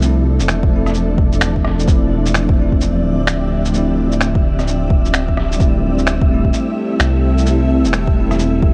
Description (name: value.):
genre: future garage.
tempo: 129 BPM.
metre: 4/4.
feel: swing 64% on 16ths.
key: D minor.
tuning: A4 = 440 Hz.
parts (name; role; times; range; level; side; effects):
bell-like tine electric piano; accompaniment; 0.0-8.7 s; F3 to E4; -23 LUFS; equal; sidechain pumping, analog delay.
granular cloud pad; sustained chords; 0.0-8.7 s; F3 to E5; -24 LUFS; equal; built-in reverb, sidechain pumping.
dark detuned saw bass; bass; 0.0-8.7 s; D1 to C2; -20 LUFS; equal; sidechain pumping.
electronic shaker, finger snaps and rim click; drums; 0.0-8.5 s; none; -23 LUFS; equal; studio reverb.
wind-like tuned noise texture; texture; 0.0-8.7 s; E5; -32 LUFS; equal; built-in reverb.
electronic kick drum; drums; 0.6-8.7 s; none; -18 LUFS; equal; studio reverb.
room: light reverb.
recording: none.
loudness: -15 LUFS.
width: mono.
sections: 0.0-8.7 A section.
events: none.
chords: 0.0 Dm7; 5.6 Am7/D.